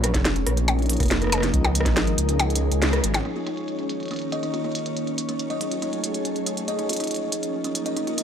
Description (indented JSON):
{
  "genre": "IDM",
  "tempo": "140 BPM",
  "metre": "4/4",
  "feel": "straight",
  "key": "Eb minor",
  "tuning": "A4 = 441 Hz",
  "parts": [
    { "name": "glassy FM pad", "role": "sustained chords", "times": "0.0-8.2 s", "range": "Eb3 to Eb5", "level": "-27 LUFS", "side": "equal", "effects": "ensemble chorus, built-in reverb" },
    { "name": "dark detuned saw bass", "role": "bass", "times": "0.0-3.2 s", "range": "F1 to Db2", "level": "-23 LUFS", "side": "equal", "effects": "none" },
    { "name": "glitchy drum kit", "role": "drums", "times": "0.0-8.2 s", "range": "hi-hat, percussion blips, rim click, snare drum", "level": "-25 LUFS", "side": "equal", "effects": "overdrive, low-pass filter on snare, low-pass filter on hats, low-pass filter on perc, low-pass filter on room" },
    { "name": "electronic kick drum", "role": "drums", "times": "0.1-1.9 s", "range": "none", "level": "-25 LUFS", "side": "equal", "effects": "none" },
    { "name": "buzzing kalimba", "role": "arpeggios", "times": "3.3-8.2 s", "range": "Db4 to Eb5", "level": "-29 LUFS", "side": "equal", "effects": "low-pass filter, tape echo" }
  ],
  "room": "light reverb, digital ambience",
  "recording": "dry, gritty hardware recording",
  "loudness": "-22 LUFS",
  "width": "side -8 dB against mid",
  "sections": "0.0-3.3 A section; 3.3-8.2 B section",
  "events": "kick drops out 2.8-3.3; band accent 2.8",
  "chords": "0.0 Bbsus4; 1.5 Db; 3.3 Eb5; 5.0 Gbmadd9; 6.7 Bbsus4",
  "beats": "0.25 0.68 1.11 | 1.54 1.97 2.39 2.82 | 3.25 3.68 4.11 4.54 | 4.97 5.39 5.82 6.25 | 6.68 7.11 7.54 7.97"
}